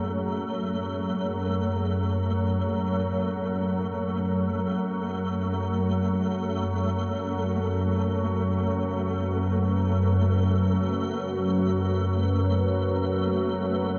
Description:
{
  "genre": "dark ambient drone",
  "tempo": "free time",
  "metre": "none",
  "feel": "none",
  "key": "F# minor",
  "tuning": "A4 = 445 Hz",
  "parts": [
    { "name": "deep dark ambient pad", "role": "sustained chords", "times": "0.0-14.0 s", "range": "F#3 to B4", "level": "-34 LUFS", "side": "equal", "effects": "chorus, built-in reverb" },
    { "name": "organ-like drone", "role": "drone", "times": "0.0-14.0 s", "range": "F#2 to F#3", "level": "-28 LUFS", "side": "equal", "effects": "ensemble chorus, built-in reverb" },
    { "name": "flickering grainy texture", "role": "texture", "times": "0.0-14.0 s", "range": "A3", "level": "-34 LUFS", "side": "equal", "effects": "built-in reverb" }
  ],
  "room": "wet huge ambient reverb, RT60 7.7 s",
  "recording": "nothing above 7.6 kHz",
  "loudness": "-26 LUFS",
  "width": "mono",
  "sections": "0.0-14.0 A section",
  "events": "none",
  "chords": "0.0 F#madd9; 4.0 F#madd11"
}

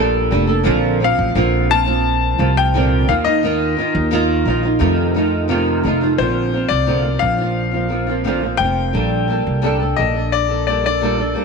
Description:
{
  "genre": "acoustic pop",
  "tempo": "87 BPM",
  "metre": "4/4",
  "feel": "straight",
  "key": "Bb major",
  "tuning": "A4 = 440 Hz",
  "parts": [
    { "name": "flamenco guitar", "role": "accompaniment", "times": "0.0-11.4 s", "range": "F2 to A4", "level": "-18 LUFS", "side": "right 2 dB", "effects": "double-tracked left and right" },
    { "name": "upright bass", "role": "bass", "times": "0.0-11.3 s", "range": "F1 to F2", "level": "-20 LUFS", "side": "right 1 dB", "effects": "none" },
    { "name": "bright upright piano", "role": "melody", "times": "1.0-11.3 s", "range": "C5 to A5", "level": "-20 LUFS", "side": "left 10 dB", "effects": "none" }
  ],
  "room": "light reverb, small room reverb",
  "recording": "none",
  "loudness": "-15 LUFS",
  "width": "side -4 dB against mid",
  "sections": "0.0-6.2 A section; 6.2-11.4 B section",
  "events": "none",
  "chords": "0.0 Gmadd9/Bb; 0.7 Bbadd9; 3.1 Ebsus2; 4.8 F7; 6.2 Bbadd9; 9.0 Gmadd9/Bb"
}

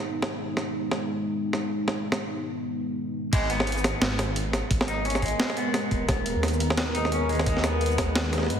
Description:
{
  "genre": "half-time drum and bass",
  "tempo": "174 BPM",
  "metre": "4/4",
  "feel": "swing 59% on 16ths, half-time",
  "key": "G# minor",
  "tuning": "A4 = 441 Hz",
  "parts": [
    { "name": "deep dark ambient pad", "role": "sustained chords", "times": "0.0-8.6 s", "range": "G#3 to A#4", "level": "-30 LUFS", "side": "equal", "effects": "chorus, built-in reverb, sidechain pumping" },
    { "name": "boom bap sampler-style drum kit", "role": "drums", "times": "0.2-8.6 s", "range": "crash cymbal, hi-hat, shaker, snare drum", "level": "-28 LUFS", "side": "equal", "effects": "none" },
    { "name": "semi-hollow electric guitar", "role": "arpeggios", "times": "3.3-8.3 s", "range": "G#3 to D#4", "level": "-31 LUFS", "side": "left 1 dB", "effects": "ping-pong delay" },
    { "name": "dark detuned saw bass", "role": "bass", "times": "3.3-8.6 s", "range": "D#1 to G#2", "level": "-29 LUFS", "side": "equal", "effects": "none" },
    { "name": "electronic kick drum", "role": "drums", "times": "3.3-8.1 s", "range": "none", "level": "-26 LUFS", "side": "equal", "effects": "none" }
  ],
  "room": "moderate lush hall reverb, RT60 2.0 s, digital ambience",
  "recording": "heavily compressed radio sound, multiband compression",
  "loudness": "-24 LUFS",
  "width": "side -8 dB against mid",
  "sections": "0.0-3.3 A section; 3.3-8.6 B section",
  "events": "drop 3.3-8.6",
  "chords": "0.0 G#m; 3.3 G#madd9"
}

